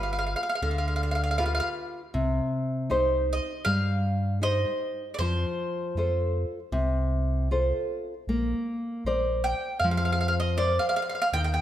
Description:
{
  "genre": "italian folk, Italian serenade",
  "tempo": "79 BPM",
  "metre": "4/4",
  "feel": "swing 53% on 8ths",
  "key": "Bb major",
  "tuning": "A4 = 440 Hz",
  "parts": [
    { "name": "mandolin", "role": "melody", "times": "0.0-11.6 s", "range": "C5 to G5", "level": "-29 LUFS", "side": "equal", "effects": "none" },
    { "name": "nylon-string guitar", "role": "accompaniment", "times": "0.0-11.6 s", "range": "C3 to D5", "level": "-28 LUFS", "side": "equal", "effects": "none" },
    { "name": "pure sine sub bass", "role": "bass", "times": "0.0-11.6 s", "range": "G1 to G2", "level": "-28 LUFS", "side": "equal", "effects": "none" }
  ],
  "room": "moderate recital hall reverb, RT60 1.6 s",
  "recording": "none",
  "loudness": "-25 LUFS",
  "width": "side -12 dB against mid",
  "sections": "0.0-11.6 A section",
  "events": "none",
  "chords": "0.0 G7; 2.2 Cm; 5.2 F; 8.3 Bbadd9",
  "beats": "0.63 1.39 | 2.16 2.92 3.68 4.44 | 5.20 5.96 6.73 7.50 | 8.28 9.05 9.81 10.58 | 11.33"
}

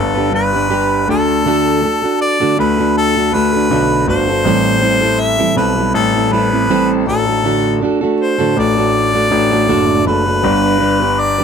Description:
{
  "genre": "pop",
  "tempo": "80 BPM",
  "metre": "4/4",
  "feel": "swing 55% on 16ths",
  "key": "unclear",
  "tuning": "A4 = 440 Hz",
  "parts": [
    { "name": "clear harmonica", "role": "melody", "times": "0.0-11.4 s", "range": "A4 to E5", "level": "-16 LUFS", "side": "left 2 dB", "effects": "none" },
    { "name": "fingerpicked plugged-in steel-string acoustic guitar", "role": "accompaniment", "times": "0.0-11.4 s", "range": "A2 to B4", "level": "-15 LUFS", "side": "right 4 dB", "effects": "none" },
    { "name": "warm concert grand piano", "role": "bass", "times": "0.0-11.3 s", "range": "F#1 to D2", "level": "-18 LUFS", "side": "left 6 dB", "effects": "none" },
    { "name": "felt-muted upright piano", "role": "accompaniment", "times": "10.4-11.4 s", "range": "B3 to D5", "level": "-23 LUFS", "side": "left 7 dB", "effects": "none" }
  ],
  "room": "little or no reverb",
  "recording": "close, detailed microphones",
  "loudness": "-12 LUFS",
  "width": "side -7 dB against mid",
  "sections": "0.0-11.4 A section",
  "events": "none",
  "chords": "0.0 G; 1.1 D; 4.5 Am7; 7.1 D/A; 10.4 G",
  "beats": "0.72 | 1.47 2.21 2.96 3.71 | 4.46 5.20 5.95 6.70 | 7.44 8.19 8.94 9.68 | 10.43 11.17"
}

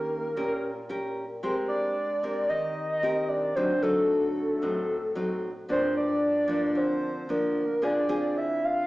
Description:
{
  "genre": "bossa nova",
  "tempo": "113 BPM",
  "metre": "4/4",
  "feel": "straight",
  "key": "unclear",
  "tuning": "A4 = 440 Hz",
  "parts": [
    { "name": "pure sine lead", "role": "melody", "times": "0.0-8.9 s", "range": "A4 to F5", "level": "-27 LUFS", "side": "equal", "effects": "chorus" },
    { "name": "nylon-string guitar", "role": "accompaniment", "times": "0.0-8.9 s", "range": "G2 to Bb4", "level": "-29 LUFS", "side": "equal", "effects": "none" }
  ],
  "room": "wet large studio reverb, RT60 1.2 s",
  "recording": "heard from further back in the room, small speaker sound",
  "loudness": "-25 LUFS",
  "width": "side -18 dB against mid",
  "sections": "0.0-8.9 A section",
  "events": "none",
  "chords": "0.0 Eb7; 1.4 Abmaj9; 3.6 D7b9; 5.7 Gm7; 7.8 Dm7b5",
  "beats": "0.36 0.89 | 1.42 1.96 2.49 3.02 | 3.55 4.09 4.62 5.15 | 5.68 6.22 6.75 7.28 | 7.82 8.35"
}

